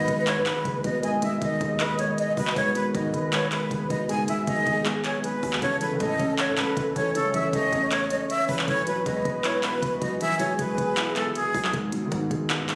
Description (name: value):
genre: hip hop, trap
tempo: 157 BPM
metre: 4/4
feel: half-time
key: G# phrygian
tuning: A4 = 439 Hz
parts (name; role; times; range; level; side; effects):
- breathy jazz flute; melody; 0.0-11.7 s; G#4 to G#5; -30 LUFS; equal; none
- warm velvety synth lead; second line; 0.0-11.7 s; G#4 to D#5; -33 LUFS; equal; chorus, tape echo
- felt-muted upright piano; accompaniment; 0.0-12.8 s; G#2 to C#5; -32 LUFS; equal; none
- dark analog pad; sustained chords; 0.5-11.7 s; D#3 to A4; -39 LUFS; equal; none
- distorted 808-style bass; bass; 0.0-12.8 s; D#1 to E3; -38 LUFS; equal; distortion
- trap drum kit; drums; 0.1-12.8 s; handclaps, hi-hat, kick drum; -32 LUFS; equal; none
room: light reverb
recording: recorded on a phone in the room, studio reverb, compression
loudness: -25 LUFS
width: mono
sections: 0.0-11.7 A section; 11.7-12.8 B section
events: none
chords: 0.0 G#m; 5.6 A; 8.7 Eadd9; 11.7 G#m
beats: 0.27 0.65 | 1.03 1.42 1.80 2.18 | 2.56 2.95 3.33 3.71 | 4.09 4.47 4.86 5.24 | 5.62 6.00 6.38 6.77 | 7.15 7.53 7.91 8.30 | 8.68 9.06 9.44 9.82 | 10.21 10.59 10.97 11.35 | 11.74 12.12 12.50